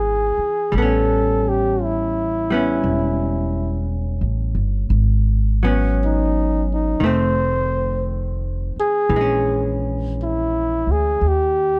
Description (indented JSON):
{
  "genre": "jazz ballad",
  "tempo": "57 BPM",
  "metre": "4/4",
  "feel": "swing 67% on 8ths",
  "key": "unclear",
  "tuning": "A4 = 437 Hz",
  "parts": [
    { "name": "dark flugelhorn", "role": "melody", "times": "0.0-11.8 s", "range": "D#4 to C5", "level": "-22 LUFS", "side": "equal", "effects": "none" },
    { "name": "hollow-body jazz guitar", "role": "accompaniment", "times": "0.0-11.3 s", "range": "Eb3 to D#4", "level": "-27 LUFS", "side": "equal", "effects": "none" },
    { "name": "upright bass", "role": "bass", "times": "0.0-11.8 s", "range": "E1 to D#2", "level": "-23 LUFS", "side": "equal", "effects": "none" }
  ],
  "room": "little or no reverb",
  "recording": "dark, warm production",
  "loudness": "-20 LUFS",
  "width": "mono",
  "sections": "0.0-11.8 A section",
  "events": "none",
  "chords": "0.0 C#m9 (rootless); 0.7 A9; 4.9 G#m7; 7.0 F7; 9.1 A#m7b5; 11.2 D#"
}